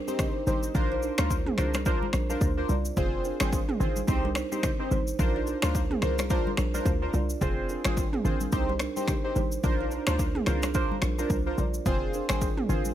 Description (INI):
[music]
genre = afrobeats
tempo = 108 BPM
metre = 4/4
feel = swing 58% on 16ths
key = unclear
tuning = A4 = 441 Hz
[part]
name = warm analog keys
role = accompaniment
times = 0.1-12.9 s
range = C4 to C5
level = -32 LUFS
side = equal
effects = chorus, phaser
[part]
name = deep house drum kit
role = drums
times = 0.1-12.9 s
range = finger snaps, kick drum, rim click, shaker, toms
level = -29 LUFS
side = equal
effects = overdrive
[part]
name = congas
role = percussion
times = 0.1-12.9 s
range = none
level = -38 LUFS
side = left 4 dB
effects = none
[part]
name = kalimba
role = riff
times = 0.5-12.8 s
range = C4 to D5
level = -34 LUFS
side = right 6 dB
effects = tape echo
[part]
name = short 808-style bass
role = bass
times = 0.5-12.9 s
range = F1 to D2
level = -29 LUFS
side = equal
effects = none
[sound]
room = little or no reverb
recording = none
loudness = -25 LUFS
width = side -12 dB against mid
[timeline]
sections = 0.0-12.9 A section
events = none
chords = 0.0 Cm; 0.7 Bbadd9; 3.0 Fm; 4.1 Cm; 5.2 Bbadd9; 7.4 Fm; 8.5 Cm; 9.6 Bbadd9; 11.9 Fm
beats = 0.19 | 0.75 1.30 1.86 2.42 | 2.97 3.53 4.08 4.64 | 5.19 5.75 6.30 6.86 | 7.42 7.97 8.53 9.08 | 9.64 10.19 10.75 11.30 | 11.86 12.41